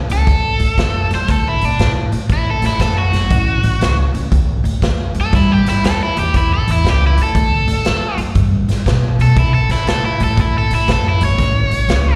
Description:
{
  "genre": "electric blues shuffle",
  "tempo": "119 BPM",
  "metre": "4/4",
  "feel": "swing 65% on 8ths",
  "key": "A mixolydian",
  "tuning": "A4 = 440 Hz",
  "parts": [
    { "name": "upright bass", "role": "bass", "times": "0.0-12.2 s", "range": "G1 to C3", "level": "-18 LUFS", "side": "equal", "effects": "none" },
    { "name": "overdriven electric guitar", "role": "melody", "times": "0.1-12.2 s", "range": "D4 to C#5", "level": "-21 LUFS", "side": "equal", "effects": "slapback echo" },
    { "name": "raw garage drum kit", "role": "drums", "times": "0.1-12.0 s", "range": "hi-hat, kick drum, snare drum", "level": "-20 LUFS", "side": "equal", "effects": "none" }
  ],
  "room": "little or no reverb",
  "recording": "live gig heard through the venue's PA, recital hall reverb",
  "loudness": "-15 LUFS",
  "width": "mono",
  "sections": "0.0-12.2 A section",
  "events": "overdriven electric guitar solo 0.0-12.2",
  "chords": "0.0 A; 1.3 D; 3.3 A7; 7.3 D7; 11.4 A",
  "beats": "0.27 0.78 | 1.29 1.79 2.30 2.80 | 3.31 3.81 4.32 4.83 | 5.33 5.83 6.34 6.84 | 7.35 7.85 8.36 8.86 | 9.37 9.87 10.37 10.88 | 11.38 11.88"
}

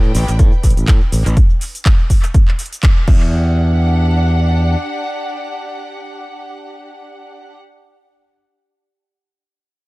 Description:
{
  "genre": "filtered disco house",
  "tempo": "123 BPM",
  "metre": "4/4",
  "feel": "swing 56% on 16ths",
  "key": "E minor",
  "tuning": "A4 = 440 Hz",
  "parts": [
    { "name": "warm symphonic violin section", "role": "sustained chords", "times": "0.0-7.6 s", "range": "D4 to G5", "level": "-25 LUFS", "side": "left 1 dB", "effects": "sidechain pumping" },
    { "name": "modern bright fingered electric bass", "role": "bass", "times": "0.0-4.7 s", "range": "A1 to A2", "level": "-14 LUFS", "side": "equal", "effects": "sidechain pumping" },
    { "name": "house drum kit", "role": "drums", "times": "0.1-3.2 s", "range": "cabasa, crash cymbal, handclaps, hi-hat", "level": "-25 LUFS", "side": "equal", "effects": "analog delay" },
    { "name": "electronic kick drum", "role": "drums", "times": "0.4-3.2 s", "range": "none", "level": "-11 LUFS", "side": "equal", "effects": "none" }
  ],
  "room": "little or no reverb",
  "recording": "echo-heavy mix",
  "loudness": "-12 LUFS",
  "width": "side -22 dB against mid",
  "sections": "0.0-3.3 A section; 3.3-7.2 B section",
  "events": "drop 0.0-3.3; band accent 2.8",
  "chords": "0.0 A9sus4; 1.4 N.C.; 3.1 Em9",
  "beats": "0.39 0.88 | 1.37 1.85 2.34 2.83 | 3.32 3.81 4.29 4.78 | 5.27 5.76 6.25 6.73"
}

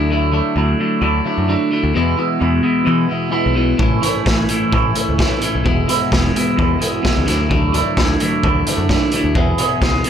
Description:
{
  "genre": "indie rock",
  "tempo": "130 BPM",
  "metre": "4/4",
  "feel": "straight",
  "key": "E mixolydian",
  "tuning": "A4 = 444 Hz",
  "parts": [
    { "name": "clean electric guitar", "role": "riff", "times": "0.0-10.1 s", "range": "E2 to G#4", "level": "-16 LUFS", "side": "right 1 dB", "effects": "phaser" },
    { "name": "modern bright picked electric bass", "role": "bass", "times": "0.0-10.0 s", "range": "E1 to E3", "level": "-19 LUFS", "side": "equal", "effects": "none" },
    { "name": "raw garage drum kit", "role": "drums", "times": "3.8-10.1 s", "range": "hi-hat, kick drum, snare drum", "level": "-18 LUFS", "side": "equal", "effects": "none" }
  ],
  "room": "light reverb",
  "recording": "none",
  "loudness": "-14 LUFS",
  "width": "side -8 dB against mid",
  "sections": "0.0-10.1 A section",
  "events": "none",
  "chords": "0.0 Dadd9; 1.9 E; 3.8 A; 5.7 E; 7.3 Dadd9; 9.4 E",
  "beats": "| 0.09 0.56 1.02 1.48 | 1.95 2.41 2.88 3.34 | 3.80 4.26 4.73 5.19 | 5.65 6.12 6.58 7.04 | 7.50 7.97 8.43 8.89 | 9.35 9.81"
}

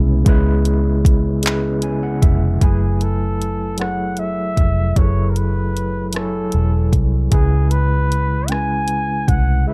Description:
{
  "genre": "slow six-eight R&B",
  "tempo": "51 BPM (dotted quarters)",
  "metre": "6/8",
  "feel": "straight",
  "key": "F# minor",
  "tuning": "A4 = 439 Hz",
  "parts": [
    { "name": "overdriven tine electric piano", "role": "accompaniment", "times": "0.0-9.7 s", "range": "C#3 to G#5", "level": "-24 LUFS", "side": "equal", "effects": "fast tremolo, plate reverb" },
    { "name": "tonewheel organ", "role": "sustained chords", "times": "0.0-2.6 s", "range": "G#3 to E4", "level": "-30 LUFS", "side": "equal", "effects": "chorus vibrato, slow rotary speaker, plate reverb" },
    { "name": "vintage muted fingered electric bass", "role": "bass", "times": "0.0-9.6 s", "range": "E1 to C#2", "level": "-21 LUFS", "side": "equal", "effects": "none" },
    { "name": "smooth R&B drum kit", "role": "drums", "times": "0.3-9.5 s", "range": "handclaps, hi-hat, kick drum, rim click", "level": "-19 LUFS", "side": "equal", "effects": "none" },
    { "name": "breathy flugelhorn", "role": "melody", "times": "2.6-9.7 s", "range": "G#4 to G#5", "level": "-27 LUFS", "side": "equal", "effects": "plate reverb, delay" }
  ],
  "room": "light reverb",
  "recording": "dark, warm production",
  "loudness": "-18 LUFS",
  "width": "mono",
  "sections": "0.0-2.6 A section; 2.6-9.7 B section",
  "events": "tine electric piano fill 1.4-2.6",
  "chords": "0.0 C#m7; 2.6 F#m11; 7.3 C#m7",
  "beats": "| 0.26 1.44 | 2.62 3.79 | 4.97 6.15 | 7.32 8.50 | 9.68"
}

